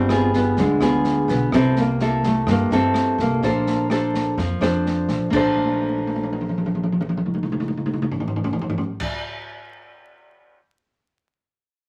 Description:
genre	bossa nova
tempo	126 BPM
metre	4/4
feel	straight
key	Bb major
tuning	A4 = 440 Hz
part	nylon-string guitar	melody	0.0-4.8 s	Ab3 to C4	-24 LUFS	equal	none
part	nylon-string guitar	accompaniment	0.0-9.1 s	G2 to C5	-23 LUFS	equal	none
part	upright bass	bass	0.0-9.1 s	G1 to G2	-29 LUFS	equal	none
part	open jazz drum kit	drums	0.1-10.6 s	crash cymbal, kick drum, rim click, snare drum, toms	-28 LUFS	equal	none
room	moderate studio reverb, RT60 0.7 s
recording	vinyl crackle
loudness	-21 LUFS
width	mono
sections	0.0-5.3 A section; 5.3-9.1 B section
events	drum fill 5.6-9.0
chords	0.0 G7b9; 1.5 C6; 3.4 Bbmaj9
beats	0.09 0.57 1.04 | 1.52 1.99 2.47 2.94 | 3.42 3.90 4.37 4.85 | 5.32 5.80 6.28 6.75 | 7.23 7.70 8.18 8.65

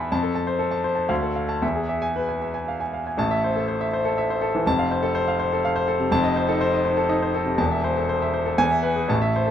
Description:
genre	classical, virtuoso piano study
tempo	121 BPM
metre	3/4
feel	rubato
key	A minor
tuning	A4 = 440 Hz
part	clear grand piano	solo	0.0-9.5 s	E1 to B5	-20 LUFS	left 1 dB	none
room	light reverb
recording	minimal, uncompressed stereo recording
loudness	-20 LUFS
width	side -9 dB against mid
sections	0.0-3.2 A section; 3.2-9.5 B section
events	none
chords	0.1 F; 1.1 Dm; 1.6 E; 3.2 Am; 4.7 F; 6.1 F7; 7.6 Am/E; 8.6 E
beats	| 0.11 0.60 1.10 | 1.62 2.15 2.67 | 3.18 3.67 4.17 | 4.65 5.15 5.63 | 6.12 6.60 7.09 | 7.59 8.09 8.60 | 9.10

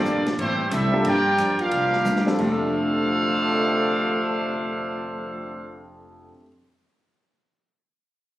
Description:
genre	jazz, big band swing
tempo	180 BPM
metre	4/4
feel	swing 63% on 8ths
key	F major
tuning	A4 = 444 Hz
part	brilliant trumpet section	melody	0.0-5.8 s	A3 to G5	-24 LUFS	equal	none
part	clear trombone section	second line	0.0-5.8 s	F2 to G4	-27 LUFS	right 1 dB	none
part	warm baby grand piano	accompaniment	0.0-6.5 s	F2 to A4	-29 LUFS	left 1 dB	none
part	upright bass	bass	0.0-6.3 s	F1 to G2	-30 LUFS	equal	none
part	picked steel-string acoustic guitar	accompaniment	0.1-6.4 s	G2 to G4	-30 LUFS	left 2 dB	none
part	open jazz drum kit	drums	0.1-2.5 s	crash cymbal, hi-hat, kick drum, ride cymbal, snare drum, toms	-30 LUFS	equal	none
room	moderate large studio reverb, RT60 0.9 s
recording	recorded on a phone in the room, club reverb, compression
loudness	-20 LUFS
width	side -14 dB against mid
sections	0.0-2.4 A section; 2.4-5.0 B section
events	drum fill 2.1-2.4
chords	0.4 Am7; 1.1 Gm7; 1.7 C9sus4; 2.4 F69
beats	0.06 0.39 0.72 | 1.05 1.39 1.72 2.05 | 2.39 2.72 3.05 3.38 | 3.72 4.05 4.38 4.71

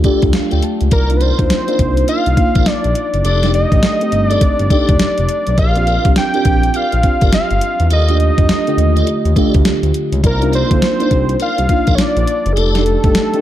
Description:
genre	R&B, new jack swing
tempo	103 BPM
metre	4/4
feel	swing 62% on 16ths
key	unclear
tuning	A4 = 439 Hz
part	mellow FM electric piano	accompaniment	0.0-13.4 s	D3 to A5	-19 LUFS	right 1 dB	chorus, phaser
part	tonewheel organ	stabs	0.0-12.8 s	Eb4 to D5	-25 LUFS	left 1 dB	chorus vibrato, slow rotary speaker
part	smooth synth bass	bass	0.0-13.1 s	F1 to F2	-16 LUFS	equal	none
part	crisp 8-bit digital drum machine	drums	0.0-13.4 s	hi-hat, kick drum, snare drum	-16 LUFS	equal	none
part	fat analog lead	melody	0.9-13.4 s	Ab4 to G5	-18 LUFS	equal	none
room	light reverb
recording	dark, warm production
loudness	-12 LUFS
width	side -12 dB against mid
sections	0.0-13.4 A section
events	FM electric piano fill 0.0-0.9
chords	0.0 Ebmaj9#11 (rootless); 0.9 Cm11; 3.2 F13; 5.6 Bb6; 7.9 Ebmaj9#11; 10.2 Cm11; 12.6 F13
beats	0.34 | 0.92 1.50 2.08 2.67 | 3.25 3.83 4.41 5.00 | 5.58 6.16 6.74 7.33 | 7.91 8.49 9.07 9.65 | 10.24 10.82 11.40 11.99 | 12.57 13.15

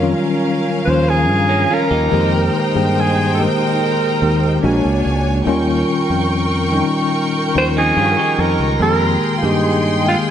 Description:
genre	soul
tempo	72 BPM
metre	4/4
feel	straight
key	unclear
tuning	A4 = 439 Hz
part	clear symphonic string section	second line	0.0-10.3 s	Db4 to Db6	-21 LUFS	right 1 dB	none
part	tine electric piano	accompaniment	0.0-10.3 s	Eb3 to G5	-18 LUFS	left 2 dB	medium stereo tremolo
part	fingered electric bass	bass	0.0-10.1 s	Bb1 to G2	-19 LUFS	equal	none
part	growling alto saxophone	melody	0.8-10.2 s	Eb4 to C5	-18 LUFS	right 1 dB	slapback echo
part	electric guitar through a small old amp	riff	1.5-2.3, 7.8-8.8 s	Bb3 to G4	-24 LUFS	right 5 dB	none
room	light reverb, small room ambience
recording	nothing above 10.7 kHz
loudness	-14 LUFS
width	side -9 dB against mid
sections	0.0-10.3 A section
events	none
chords	0.0 Eb9; 2.1 Fm11; 4.6 Bb7alt; 5.5 Eb9; 8.8 Fm11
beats	0.45 1.28 | 2.12 2.96 3.79 4.63 | 5.46 6.30 7.13 7.97 | 8.80 9.64

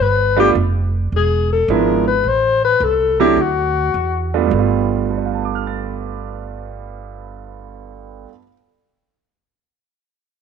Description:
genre	jazz, small-group swing and bop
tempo	106 BPM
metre	4/4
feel	swing 67% on 8ths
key	G mixolydian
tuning	A4 = 444 Hz
part	dark alto saxophone	melody	0.0-4.4 s	F#4 to C5	-16 LUFS	left 7 dB	none
part	upright bass	bass	0.0-8.2 s	E1 to E2	-22 LUFS	right 2 dB	none
part	clear concert grand piano	accompaniment	0.4-8.5 s	G2 to A6	-20 LUFS	right 13 dB	none
room	moderate echo chamber reverb, RT60 1.4 s, small room reverb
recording	1960s-style stereo with parts hard left and right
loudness	-14 LUFS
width	side -6 dB against mid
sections	0.0-4.5 A section; 4.5-6.8 B section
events	alto saxophone solo 0.0-4.5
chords	0.0 G9; 1.1 E7b9; 2.3 Am; 3.4 Dadd9; 4.5 G9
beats	0.55 1.12 1.69 | 2.25 2.82 3.38 3.95 | 4.52 5.08 5.65 6.21

